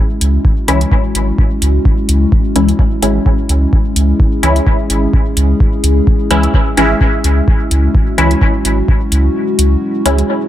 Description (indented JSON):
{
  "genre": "dub techno",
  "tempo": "128 BPM",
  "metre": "4/4",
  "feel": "swing 55% on 16ths",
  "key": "C# minor",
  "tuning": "A4 = 440 Hz",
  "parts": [
    { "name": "dark analog pad", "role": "sustained chords", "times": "0.0-10.5 s", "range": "G#3 to G#4", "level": "-18 LUFS", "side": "left 1 dB", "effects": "chorus, sidechain pumping" },
    { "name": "warm sub bass", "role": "bass", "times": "0.2-10.2 s", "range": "G#1 to C#2", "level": "-12 LUFS", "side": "equal", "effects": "sidechain pumping" },
    { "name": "electronic hi-hat", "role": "drums", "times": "0.2-10.3 s", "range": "none", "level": "-19 LUFS", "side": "equal", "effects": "none" },
    { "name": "electronic kick drum", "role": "drums", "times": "0.4-9.0 s", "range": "none", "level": "-12 LUFS", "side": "equal", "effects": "none" },
    { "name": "filtered dub chord stab", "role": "stabs", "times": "0.7-10.2 s", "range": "E3 to E4", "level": "-16 LUFS", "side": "left 1 dB", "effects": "chorus, phaser, sidechain pumping, dub echo" }
  ],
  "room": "light reverb, digital ambience",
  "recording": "none",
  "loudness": "-10 LUFS",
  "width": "side -12 dB against mid",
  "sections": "0.0-10.5 A section",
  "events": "kick drops out 9.4-10.5",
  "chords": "0.0 C#m"
}